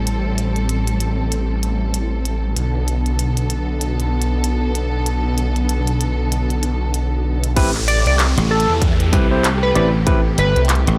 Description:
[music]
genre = glitch hop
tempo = 96 BPM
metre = 4/4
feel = swing 58% on 16ths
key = unclear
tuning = A4 = 440 Hz
[part]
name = warm studio string section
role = sustained chords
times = 0.0-11.0 s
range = C3 to A4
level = -27 LUFS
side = equal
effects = sidechain pumping
[part]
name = phased detuned saw bass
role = bass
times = 0.0-10.8 s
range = A1 to E2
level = -21 LUFS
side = equal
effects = phaser
[part]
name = glitchy drum kit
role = drums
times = 0.1-11.0 s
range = crash cymbal, handclaps, hi-hat, rim click, tambourine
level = -26 LUFS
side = equal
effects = overdrive
[part]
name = barky tine electric piano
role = stabs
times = 7.6-10.2 s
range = C4 to D5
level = -24 LUFS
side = equal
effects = overdrive, vintage 12-bit sampler grit, sidechain pumping, tape echo
[part]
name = electronic kick drum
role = drums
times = 7.6-10.2 s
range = none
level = -20 LUFS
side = equal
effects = overdrive
[part]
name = downlifter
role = sound effects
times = 7.6-11.0 s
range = none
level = -30 LUFS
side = equal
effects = none
[part]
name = sync lead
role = melody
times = 7.9-10.6 s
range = A4 to D5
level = -22 LUFS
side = equal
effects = chorus, tape echo
[part]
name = dry thumbed slap bass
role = bass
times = 8.4-11.0 s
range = G1 to C2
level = -20 LUFS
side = equal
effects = none
[sound]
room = light reverb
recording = dry, gritty hardware recording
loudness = -18 LUFS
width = mono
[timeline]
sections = 0.0-7.6 A section; 7.6-11.0 B section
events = drop 7.6-11.0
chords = 0.0 Am7; 2.6 Bm7; 7.6 Am7

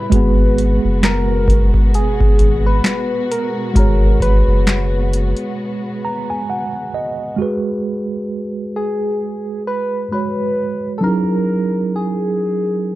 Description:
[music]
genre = lo-fi hip hop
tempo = 66 BPM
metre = 4/4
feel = swing 57% on 16ths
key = G# minor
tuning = A4 = 440 Hz
[part]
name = soft struck synth lead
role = melody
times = 0.0-13.0 s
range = G#4 to B4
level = -21 LUFS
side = left 1 dB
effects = chorus, low-pass filter, tape echo
[part]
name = mellow tine electric piano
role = accompaniment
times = 0.0-13.0 s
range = F#3 to A#5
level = -20 LUFS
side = right 2 dB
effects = medium stereo tremolo, low-pass filter
[part]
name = warm studio string section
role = sustained chords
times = 0.0-7.4 s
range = B2 to F#4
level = -26 LUFS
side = left 1 dB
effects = low-pass filter
[part]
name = soft dub sub bass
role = bass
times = 0.1-5.3 s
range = F#1 to G#1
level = -17 LUFS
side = equal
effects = none
[part]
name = booming analog drum machine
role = drums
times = 0.1-5.6 s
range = handclaps, hi-hat, kick drum, snare drum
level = -14 LUFS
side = equal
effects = overdrive
[sound]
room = light reverb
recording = dark, warm production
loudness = -15 LUFS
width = side -16 dB against mid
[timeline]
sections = 0.0-7.4 A section; 7.4-13.0 B section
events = break 5.6-7.4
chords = 0.1 G#m9; 7.4 G#m7; 11.0 F#13

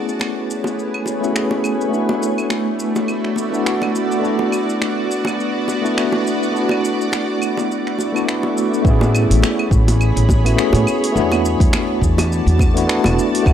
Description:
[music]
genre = sunset chillout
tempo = 104 BPM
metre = 4/4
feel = swing 56% on 16ths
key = unclear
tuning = A4 = 440 Hz
[part]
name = tine electric piano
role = accompaniment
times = 0.0-13.5 s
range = A3 to G#4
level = -19 LUFS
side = left 1 dB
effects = medium stereo tremolo, auto-pan, analog delay
[part]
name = shimmering ambient pad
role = sustained chords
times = 0.0-13.5 s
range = A3 to B5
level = -22 LUFS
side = equal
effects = chorus, built-in reverb
[part]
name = deep house drum kit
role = drums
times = 0.1-13.5 s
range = claves, finger snaps, hi-hat, shaker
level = -25 LUFS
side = right 1 dB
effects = small room ambience
[part]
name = bongos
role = percussion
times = 0.2-13.1 s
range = none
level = -25 LUFS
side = right 1 dB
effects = none
[part]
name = upright bass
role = bass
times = 8.8-13.5 s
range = E1 to A2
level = -17 LUFS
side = equal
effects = none
[part]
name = electronic kick drum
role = drums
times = 8.8-13.5 s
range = none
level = -16 LUFS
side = equal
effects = small room ambience
[sound]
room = little or no reverb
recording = dry, gritty hardware recording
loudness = -15 LUFS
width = side -10 dB against mid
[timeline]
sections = 0.0-8.9 A section; 8.9-13.5 B section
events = none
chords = 0.0 Amaj9; 1.9 E9sus4; 8.9 Amaj9; 11.2 E9sus4

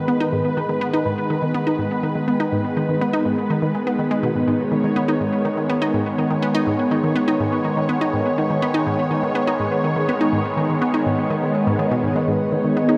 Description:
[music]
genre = ambient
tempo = 123 BPM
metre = 4/4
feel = straight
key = G# minor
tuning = A4 = 440 Hz
[part]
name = lush unison pad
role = sustained chords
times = 0.0-13.0 s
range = D#3 to C#5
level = -23 LUFS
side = equal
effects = chorus, phaser, shimmer reverb
[part]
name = resonant blip pluck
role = riff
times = 0.0-13.0 s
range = G#2 to D#4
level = -25 LUFS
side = equal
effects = chorus, shimmer reverb, analog delay
[part]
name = expressive portamento lead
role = melody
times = 12.3-13.0 s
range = B4 to D#5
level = -28 LUFS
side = equal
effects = analog chorus
[sound]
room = wet concert hall reverb, RT60 1.9 s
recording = none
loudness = -21 LUFS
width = mono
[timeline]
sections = 0.0-13.0 A section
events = none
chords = 0.0 G#m

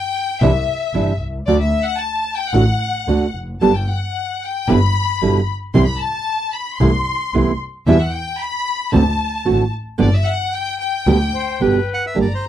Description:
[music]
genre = tango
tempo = 113 BPM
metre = 4/4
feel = rubato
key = G major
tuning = A4 = 439 Hz
[part]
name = clear studio violin section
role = second line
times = 0.0-12.5 s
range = D5 to C6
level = -22 LUFS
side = left 5 dB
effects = none
[part]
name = nylon-string guitar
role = accompaniment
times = 0.4-12.3 s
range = B2 to G4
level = -16 LUFS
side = right 4 dB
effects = none
[part]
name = clear double bass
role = bass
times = 0.4-12.4 s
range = F1 to E2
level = -18 LUFS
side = equal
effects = none
[part]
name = breathy bright silver concert flute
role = second line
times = 11.3-12.2 s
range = B4 to C5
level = -24 LUFS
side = left 6 dB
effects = none
[part]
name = bandoneon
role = melody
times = 11.9-12.5 s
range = C5 to F#5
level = -23 LUFS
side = right 2 dB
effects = none
[sound]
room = little or no reverb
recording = dry, close 1970s-style studio recording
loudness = -16 LUFS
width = side -11 dB against mid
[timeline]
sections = 0.0-12.2 A section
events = violin section solo 0.0-12.2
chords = 0.4 Cadd9; 1.5 D; 3.6 N.C.; 4.7 Em7/G; 5.8 C; 6.8 Amadd9/C; 7.9 Em; 8.9 D7; 10.0 G

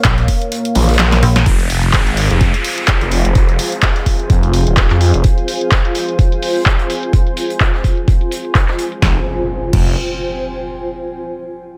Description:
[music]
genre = bass house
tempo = 127 BPM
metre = 4/4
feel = swing 56% on 16ths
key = F minor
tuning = A4 = 440 Hz
[part]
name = dark analog pad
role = sustained chords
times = 0.0-9.2 s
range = Bb3 to F5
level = -27 LUFS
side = equal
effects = chorus, sidechain pumping
[part]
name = metallic FM bass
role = bass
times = 0.0-1.4 s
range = Bb1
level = -16 LUFS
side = equal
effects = tube saturation, sidechain pumping
[part]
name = electronic kick drum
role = drums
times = 0.0-9.8 s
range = none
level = -16 LUFS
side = equal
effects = none
[part]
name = house drum kit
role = drums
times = 0.0-9.8 s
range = crash cymbal, handclaps, hi-hat, snare drum, toms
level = -21 LUFS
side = equal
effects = low-pass filter on hats, low-pass filter on snare, low-pass filter on toms, low-pass filter on cymbals
[part]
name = vintage drum kit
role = drums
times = 0.0-8.9 s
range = hi-hat, snare drum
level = -33 LUFS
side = equal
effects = high-pass filter on hats, high-pass filter on snare, high-pass filter on room
[part]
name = phased detuned saw bass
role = bass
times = 0.8-5.2, 9.0-10.0 s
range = Eb1 to F2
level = -16 LUFS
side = equal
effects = phaser, overdrive, sidechain pumping
[part]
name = downlifter and impact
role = sound effects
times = 1.5-5.2, 9.2-10.9 s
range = none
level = -27 LUFS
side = equal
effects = none
[part]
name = granular cloud pad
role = texture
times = 2.6-10.9 s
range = F4 to Ab5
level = -25 LUFS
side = equal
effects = built-in reverb, sidechain pumping
[sound]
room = light reverb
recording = none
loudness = -15 LUFS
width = mono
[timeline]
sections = 0.0-1.5 A section; 1.5-9.0 B section; 9.0-10.9 C section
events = drop 0.0-1.5; kick drops out 0.5-1.5; drum fill 0.8-1.5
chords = 0.0 Bbm; 1.5 Fm

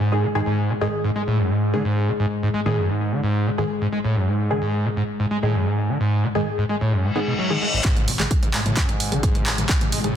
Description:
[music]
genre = driving peak-time techno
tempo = 130 BPM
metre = 4/4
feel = straight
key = unclear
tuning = A4 = 441 Hz
[part]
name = screaming distorted acid line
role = riff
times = 0.0-10.2 s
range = G#1 to B3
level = -22 LUFS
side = equal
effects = distortion, lush chorus, sidechain pumping, ping-pong delay
[part]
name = deep dark ambient pad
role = drone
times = 0.0-10.2 s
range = G#2 to G#3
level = -28 LUFS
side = left 2 dB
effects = chorus, built-in reverb, sidechain pumping
[part]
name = filtered dub chord stab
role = stabs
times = 0.1-10.2 s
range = D#3 to G#4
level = -27 LUFS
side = equal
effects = phaser, lush chorus, cassette tape, sidechain pumping, ping-pong delay
[part]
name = reverse cymbal and riser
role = sound effects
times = 7.1-10.2 s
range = none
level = -27 LUFS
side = left 2 dB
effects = none
[part]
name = electronic kick drum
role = drums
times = 7.8-9.8 s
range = none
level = -21 LUFS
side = equal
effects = none
[part]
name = punchy analog drum machine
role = drums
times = 7.8-10.1 s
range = handclaps, hi-hat, toms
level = -23 LUFS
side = right 1 dB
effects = overdrive, low-pass filter on snare, low-pass filter on hats, low-pass filter on toms, low-pass filter on room
[part]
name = dark detuned saw bass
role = bass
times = 8.1-10.1 s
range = G#1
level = -30 LUFS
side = equal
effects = sidechain pumping
[sound]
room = moderate digital room reverb, RT60 1.2 s, digital ambience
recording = dense, heavily limited modern master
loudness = -19 LUFS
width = side -9 dB against mid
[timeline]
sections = 0.0-7.8 A section; 7.8-10.2 B section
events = reverse cymbal 7.1-7.8; build-up 7.8-10.2; drum fill 7.8-10.2; filter sweep on acid bass 7.8-10.2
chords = 0.0 G#5

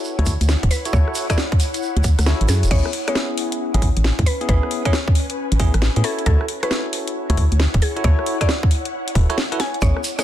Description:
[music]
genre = UK garage, two-step garage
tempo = 135 BPM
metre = 4/4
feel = swing 65% on 16ths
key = unclear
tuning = A4 = 440 Hz
[part]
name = bell-like tine electric piano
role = stabs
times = 0.0-10.2 s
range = B3 to C#5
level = -27 LUFS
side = equal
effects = medium stereo tremolo, dub echo
[part]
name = tube shaker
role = percussion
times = 0.0-2.7, 9.8-10.2 s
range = none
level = -31 LUFS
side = right 5 dB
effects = none
[part]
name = ethereal airy pad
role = texture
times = 0.0-10.2 s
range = C#4 to G#5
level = -29 LUFS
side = left 2 dB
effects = ensemble chorus, built-in reverb, sidechain pumping
[part]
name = organ-like FM bass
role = bass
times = 0.2-9.9 s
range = D1 to A2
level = -17 LUFS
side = equal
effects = tube saturation
[part]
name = garage drum kit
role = drums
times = 0.2-10.2 s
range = crash cymbal, hi-hat, rim click, snare drum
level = -25 LUFS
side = left 1 dB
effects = studio ambience
[part]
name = electronic kick drum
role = drums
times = 0.3-9.9 s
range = none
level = -18 LUFS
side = equal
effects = studio ambience
[part]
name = mallet-like synth pluck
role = melody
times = 0.7-10.2 s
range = G#4 to G#5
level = -28 LUFS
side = left 1 dB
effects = chorus, dub echo
[sound]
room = little or no reverb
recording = dense, heavily limited modern master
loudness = -17 LUFS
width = side -12 dB against mid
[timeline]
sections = 0.0-2.7 A section; 2.7-10.2 B section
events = kick drops out 2.3-2.7; drop 2.7-10.2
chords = 0.0 Dmaj9; 2.7 Amaj9; 6.0 Dmaj9

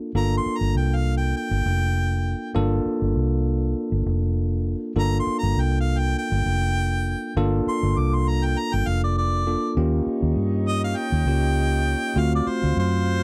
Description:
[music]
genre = blues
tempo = 100 BPM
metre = 4/4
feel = swing 54% on 16ths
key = G minor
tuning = A4 = 442 Hz
[part]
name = barky tine electric piano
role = accompaniment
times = 0.0-13.2 s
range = A3 to A4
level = -28 LUFS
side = equal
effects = none
[part]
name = vintage muted fingered electric bass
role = bass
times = 0.1-13.2 s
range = F1 to G2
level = -25 LUFS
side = equal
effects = none
[part]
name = bright harmonica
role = second line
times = 0.2-13.2 s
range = C5 to D6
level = -30 LUFS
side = equal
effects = none
[part]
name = dark horn section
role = sustained chords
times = 9.8-13.2 s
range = Eb4 to E#5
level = -39 LUFS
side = equal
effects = none
[sound]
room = little or no reverb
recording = dry, close 1970s-style studio recording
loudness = -23 LUFS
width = mono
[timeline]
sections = 0.1-13.2 A section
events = harmonica solo 0.1-13.2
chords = 0.1 Gm9; 9.8 Eb7; 12.2 D7#9

